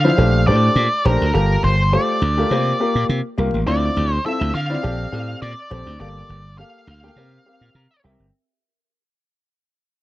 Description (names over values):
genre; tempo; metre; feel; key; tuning
early-eighties boogie funk; 103 BPM; 4/4; straight; unclear; A4 = 440 Hz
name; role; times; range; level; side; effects
octave-fuzz lead guitar; melody; 0.0-8.0 s; Bb4 to F5; -22 LUFS; equal; distortion, slapback echo
warm baby grand piano; accompaniment; 0.0-8.3 s; F3 to Bb5; -22 LUFS; left 2 dB; none
slap bass; bass; 0.0-8.3 s; G1 to D3; -19 LUFS; equal; none
room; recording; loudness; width
small room ambience; dry, close 1970s-style studio recording; -16 LUFS; side -16 dB against mid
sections
0.0-8.3 A section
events
fade-out 0.0-8.3; grand piano fill 7.5-8.3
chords
0.2 Bbmaj13; 1.3 Gm9; 2.5 C7sus4; 3.7 Dm9; 4.8 Bbmaj13; 6.0 Gm9; 7.2 C7sus4